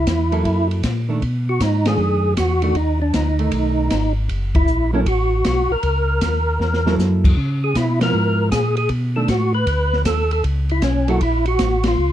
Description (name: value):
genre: soul jazz organ trio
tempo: 156 BPM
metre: 4/4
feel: swing 66% on 8ths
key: F# mixolydian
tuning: A4 = 440 Hz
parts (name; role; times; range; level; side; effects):
- percussive tonewheel organ; melody; 0.0-12.1 s; C#4 to B4; -20 LUFS; equal; slow rotary speaker, overdrive, chorus vibrato
- mellow tonewheel organ; bass; 0.0-12.1 s; F#1 to C#3; -20 LUFS; equal; slow rotary speaker
- open jazz drum kit; drums; 0.1-11.9 s; crash cymbal, hi-hat, kick drum, ride cymbal, snare drum; -22 LUFS; left 1 dB; none
- hollow-body jazz guitar; accompaniment; 0.3-11.2 s; D#3 to A4; -23 LUFS; right 3 dB; none
room: little or no reverb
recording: dark, warm production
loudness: -16 LUFS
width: side -12 dB against mid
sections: 0.0-12.1 A section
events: band accent 1.8, 4.5, 7.9, 11.8; drum fill 6.6-7.0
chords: 0.0 F#7#9; 1.2 B7#9; 4.3 F#7#9; 7.4 C#7#9; 8.9 B7#9; 10.4 F#7#9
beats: 0.07 0.45 0.84 | 1.22 1.60 1.99 2.37 | 2.76 3.14 3.53 3.91 | 4.29 4.68 5.06 5.45 | 5.83 6.22 6.60 6.99 | 7.37 7.75 8.14 8.52 | 8.91 9.29 9.68 10.06 | 10.44 10.83 11.21 11.59 | 11.98